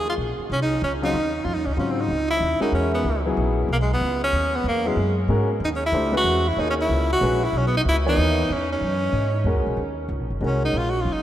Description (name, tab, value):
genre	jazz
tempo	187 BPM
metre	3/4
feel	swing 62% on 8ths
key	C# dorian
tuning	A4 = 442 Hz
part	breathy tenor saxophone	melody	0.0-11.2 s	G#3 to Gb4	-23 LUFS	equal	none
part	upright bass	bass	0.0-11.2 s	Gb1 to Ab2	-24 LUFS	equal	none
part	warm concert grand piano	accompaniment	1.0-10.9 s	Db3 to C#5	-27 LUFS	left 1 dB	none
room	wet cathedral reverb, RT60 5.5 s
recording	in a vast, echoing space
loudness	-20 LUFS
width	side -12 dB against mid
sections	0.0-2.1 A section; 2.1-9.8 B section; 9.8-11.2 C section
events	tenor saxophone solo 9.8-11.2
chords	0.0 Ebm11; 2.1 C#m7; 4.0 F#sus2/C#; 5.9 C#m9; 7.9 F#add9/C#; 9.8 Ebm11